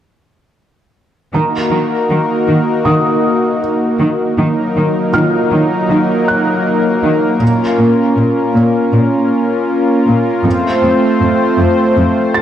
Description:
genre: cinematic.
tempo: 79 BPM.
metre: 4/4.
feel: straight.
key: unclear.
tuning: A4 = 440 Hz.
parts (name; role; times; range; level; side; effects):
warm analog pad; sustained chords; 1.3-12.4 s; Gb3 to C5; -12 LUFS; equal; chorus.
rich symphonic cello section; bass; 1.3-12.1 s; F2 to Eb3; -16 LUFS; equal; none.
felt-muted upright piano; texture; 1.3-12.4 s; F4 to A6; -20 LUFS; right 2 dB; tape echo.
room: wet recital hall reverb, RT60 1.6 s.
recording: dark, warm production.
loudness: -11 LUFS.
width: side -10 dB against mid.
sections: 1.3-12.4 A section.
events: none.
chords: 1.3 Ebm; 7.4 Bbm; 10.5 F.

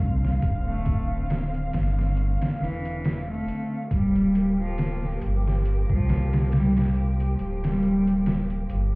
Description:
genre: trip hop.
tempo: 69 BPM.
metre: 4/4.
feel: swing 56% on 16ths.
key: unclear.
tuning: A4 = 440 Hz.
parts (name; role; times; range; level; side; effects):
muted studio string section; sustained chords; 0.0-9.0 s; D3 to F5; -32 LUFS; equal; none.
warm sub bass; bass; 0.0-9.0 s; D1 to C2; -26 LUFS; equal; none.
bowed-like drone; texture; 0.0-9.0 s; F5; -46 LUFS; right 2 dB; none.
trip hop sampler-style drum kit; drums; 0.2-8.9 s; hi-hat, kick drum, snare drum; -26 LUFS; equal; overdrive, small room ambience.
clear cello; melody; 0.7-8.2 s; E3 to A3; -27 LUFS; equal; tape echo.
room: little or no reverb.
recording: heard muffled through a wall, club reverb, vinyl crackle, EQ.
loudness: -22 LUFS.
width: side -27 dB against mid.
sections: 0.0-9.0 A section.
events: none.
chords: 0.0 G5/D; 3.9 Gm7/D.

